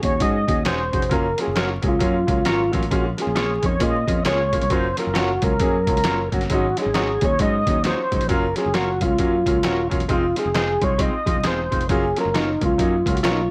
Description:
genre	uptempo 1960s-style soul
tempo	134 BPM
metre	4/4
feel	swing 61% on 8ths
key	unclear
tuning	A4 = 438 Hz
part	mellow tonewheel organ	melody	0.0-13.5 s	Eb4 to Eb5	-25 LUFS	equal	chorus vibrato, slow rotary speaker
part	bright upright piano	accompaniment	0.0-13.4 s	Gb3 to Ab4	-28 LUFS	equal	none
part	picked electric bass	bass	0.0-13.5 s	Eb1 to Bb2	-28 LUFS	equal	none
part	lo-fi sampler-style drum kit	drums	0.0-13.4 s	hi-hat, kick drum, snare drum	-27 LUFS	equal	none
part	semi-hollow electric guitar	stabs	0.7-13.4 s	Eb4 to Db5	-31 LUFS	equal	spring reverb
room	light reverb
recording	vinyl crackle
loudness	-21 LUFS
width	mono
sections	0.0-13.5 A section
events	none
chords	0.0 Ab7sus4; 1.1 Gbmaj7; 2.9 Bbm7; 4.7 Gbmaj7; 6.5 Ab7sus4; 8.3 Gbmaj7; 10.1 Fm7; 11.9 Gbmaj7

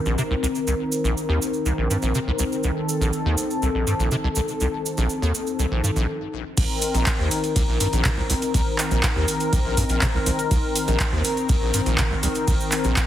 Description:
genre	acid house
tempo	122 BPM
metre	4/4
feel	straight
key	unclear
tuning	A4 = 440 Hz
part	warm analog pad	sustained chords	0.0-13.1 s	Eb3 to Bb4	-25 LUFS	left 2 dB	chorus, sidechain pumping
part	acid bass, square	riff	0.1-12.9 s	Bb1 to C3	-24 LUFS	equal	tube saturation, ensemble chorus, sidechain pumping, ping-pong delay
part	cabasa	percussion	0.1-13.1 s	none	-31 LUFS	right 4 dB	none
part	electro analog drum machine	drums	6.6-13.1 s	crash cymbal, handclaps, hi-hat, ride cymbal	-26 LUFS	right 1 dB	none
part	electronic kick drum	drums	6.6-13.1 s	none	-23 LUFS	equal	none
room	light reverb, digital ambience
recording	heavily compressed radio sound, multiband compression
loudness	-20 LUFS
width	side -12 dB against mid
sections	0.0-6.6 A section; 6.6-13.1 B section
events	filter sweep on analog synth pad 0.0-6.6; stop 6.1-6.6; drop 6.6-13.1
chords	0.0 Cm7

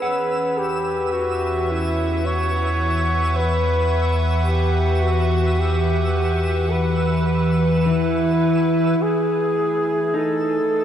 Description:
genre	ambient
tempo	54 BPM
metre	4/4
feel	straight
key	unclear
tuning	A4 = 440 Hz
part	mellow flugelhorn	melody	0.0-10.8 s	E4 to C#5	-21 LUFS	equal	tape echo
part	evolving wavetable pad	sustained chords	0.0-10.8 s	E3 to F#5	-24 LUFS	left 1 dB	chorus, built-in reverb
part	electric guitar at the edge of break-up	arpeggios	0.0-10.8 s	E3 to F#5	-25 LUFS	left 1 dB	tape echo
part	round analog bass	bass	0.0-9.0 s	E2	-22 LUFS	equal	none
part	twinkling granular texture	texture	0.0-10.8 s	E6	-34 LUFS	right 1 dB	built-in reverb
room	wet huge ambient reverb, RT60 7.0 s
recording	dark, warm production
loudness	-18 LUFS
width	side -9 dB against mid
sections	0.0-9.0 A section; 9.0-10.8 B section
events	none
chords	0.0 Em; 9.0 Amaj7

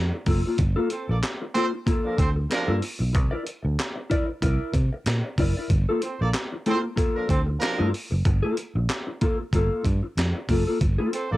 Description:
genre	funk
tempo	94 BPM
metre	4/4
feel	swing 56% on 16ths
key	G dorian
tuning	A4 = 440 Hz
part	fingered electric bass	bass	0.0-11.4 s	F#1 to C3	-24 LUFS	equal	none
part	mellow electric guitar	accompaniment	0.1-11.4 s	Bb3 to D5	-27 LUFS	left 2 dB	analog chorus, cassette tape
part	breakbeat sampler-style drum kit	drums	0.3-11.3 s	handclaps, hi-hat, kick drum, snare drum	-26 LUFS	equal	cassette tape
part	warm horn section	second line	0.9-11.4 s	F3 to D5	-28 LUFS	right 3 dB	cassette tape
room	little or no reverb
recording	home recording on cassette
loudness	-22 LUFS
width	side -17 dB against mid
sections	0.0-11.4 A section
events	none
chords	0.0 Gm9 (rootless); 3.1 C9; 5.7 Gm9

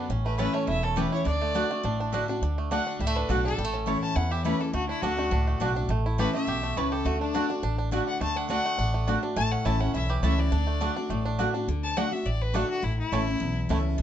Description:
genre	bluegrass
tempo	208 BPM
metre	4/4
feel	straight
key	D major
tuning	A4 = 440 Hz
part	picked steel-string acoustic guitar	accompaniment	0.0-14.0 s	E2 to F#4	-30 LUFS	left 3 dB	none
part	bluegrass banjo	arpeggios	0.0-13.8 s	D3 to G4	-33 LUFS	right 6 dB	none
part	upright bass	bass	0.1-14.0 s	E1 to E2	-28 LUFS	equal	none
part	rich fiddle	melody	0.3-2.1 s	A4 to E5	-31 LUFS	right 2 dB	none
part	mandolin	stabs	0.4-13.8 s	A3 to A5	-33 LUFS	right 4 dB	none
part	clear fiddle	second line	2.7-13.8 s	D4 to A5	-32 LUFS	left 4 dB	none
room	light reverb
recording	dark, warm production, nothing above 7.9 kHz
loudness	-24 LUFS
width	side -10 dB against mid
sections	0.0-2.4 A section; 2.4-11.7 B section; 11.7-14.0 B section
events	fiddle solo 2.4-14.0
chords	0.1 A; 1.3 D; 3.6 A; 4.7 D; 5.9 A; 7.1 D; 9.4 A; 10.5 D; 12.8 A

